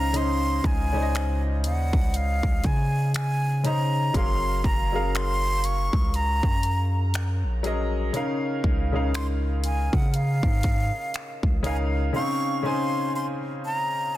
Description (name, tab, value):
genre	contemporary R&B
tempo	60 BPM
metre	4/4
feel	swing 58% on 16ths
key	Db major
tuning	A4 = 439 Hz
part	breathy jazz flute	melody	0.0-14.2 s	F5 to Db6	-29 LUFS	equal	tape echo
part	clear concert grand piano	accompaniment	0.0-14.2 s	Db3 to Ab5	-29 LUFS	left 1 dB	none
part	long sustained 808-style bass	bass	0.0-12.1 s	Gb1 to Db3	-25 LUFS	equal	none
part	pop drum kit	drums	0.1-11.9 s	finger snaps, hi-hat, kick drum	-25 LUFS	equal	soft clipping on snare
room	studio reverb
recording	dense, heavily limited modern master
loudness	-22 LUFS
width	side -15 dB against mid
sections	0.0-12.1 A section; 12.1-14.2 B section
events	none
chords	0.0 Dbmaj7; 4.1 Gbmaj7; 8.1 Db69; 12.1 Dbmaj7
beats	| 0.14 1.14 2.14 3.14 | 4.14 5.14 6.14 7.14 | 8.14 9.14 10.14 11.14 | 12.14 13.14 14.14